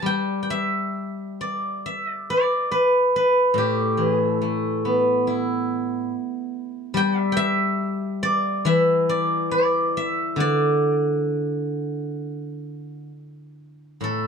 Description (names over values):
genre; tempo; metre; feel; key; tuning
chinese traditional, Chinese solo plucked strings; 62-72 BPM; 4/4; rubato; D zhi mode; A4 = 440 Hz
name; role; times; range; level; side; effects
steel-string zither; solo; 0.0-14.3 s; A2 to A5; -20 LUFS; equal; none
room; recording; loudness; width
moderate small room reverb, RT60 0.5 s; dark, warm production; -20 LUFS; side -6 dB against mid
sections
0.0-14.0 A section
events
none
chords
none